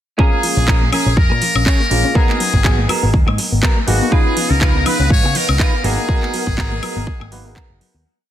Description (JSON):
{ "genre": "nu-disco, nu disco", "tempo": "122 BPM", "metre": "4/4", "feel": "swing 56% on 16ths", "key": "G# dorian", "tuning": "A4 = 441 Hz", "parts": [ { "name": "muted trumpet section", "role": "melody", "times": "0.2-7.8 s", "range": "F#4 to C#5", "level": "-21 LUFS", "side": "left 2 dB", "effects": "digital delay" }, { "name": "warm grand piano", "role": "accompaniment", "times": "0.2-8.0 s", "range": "G#3 to B4", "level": "-26 LUFS", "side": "right 1 dB", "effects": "sidechain pumping" }, { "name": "soft round pluck", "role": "arpeggios", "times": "0.2-8.0 s", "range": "E#3 to C#4", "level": "-26 LUFS", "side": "left 4 dB", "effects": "chorus, vintage 12-bit sampler grit, sidechain pumping, digital delay" }, { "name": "clean electric guitar", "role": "riff", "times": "0.2-8.0 s", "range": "B3 to C#5", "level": "-24 LUFS", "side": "right 2 dB", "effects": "analog chorus" }, { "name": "electronic kick drum", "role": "drums", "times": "0.2-7.7 s", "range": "none", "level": "-15 LUFS", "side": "equal", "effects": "none" }, { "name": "house drum kit", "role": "drums", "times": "0.4-7.9 s", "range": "handclaps, hi-hat, woodblock", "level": "-22 LUFS", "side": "equal", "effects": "soft clipping on snare" }, { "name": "picked electric bass with an envelope filter", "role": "bass", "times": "0.6-8.0 s", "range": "F#1 to C#3", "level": "-18 LUFS", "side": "equal", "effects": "none" }, { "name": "string machine, full ensemble", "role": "sustained chords", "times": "4.1-8.0 s", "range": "B3 to D#6", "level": "-28 LUFS", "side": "equal", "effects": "phaser, ensemble chorus, sidechain pumping" } ], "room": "light reverb, digital ambience", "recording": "dense, heavily limited modern master", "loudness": "-13 LUFS", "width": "side -11 dB against mid", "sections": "0.2-8.1 groove", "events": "fade-out 5.4-8.1", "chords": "0.2 A#m7; 2.2 G#m9; 4.1 C#9; 5.8 G#m9" }